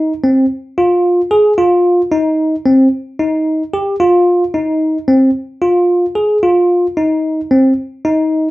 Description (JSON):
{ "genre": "progressive instrumental, progressive", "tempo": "223 BPM (eighths)", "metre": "9/8", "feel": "straight", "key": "unclear", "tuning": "A4 = 444 Hz", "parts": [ { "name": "bell-like tine electric piano", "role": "solo", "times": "0.0-8.5 s", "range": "C4 to Ab4", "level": "-11 LUFS", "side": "equal", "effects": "none" } ], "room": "wet small room reverb, RT60 0.6 s", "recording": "rough home demo mix", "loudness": "-11 LUFS", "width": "side -18 dB against mid", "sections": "0.0-8.5 A section", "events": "none", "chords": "none", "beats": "0.24 | 0.51 0.77 1.04 1.31 1.58 1.85 2.12 2.39 2.66 | 2.93 3.20 3.47 3.74 4.01 4.28 4.55 4.82 5.08 | 5.35 5.62 5.89 6.16 6.43 6.70 6.97 7.24 7.51 | 7.78 8.05 8.32" }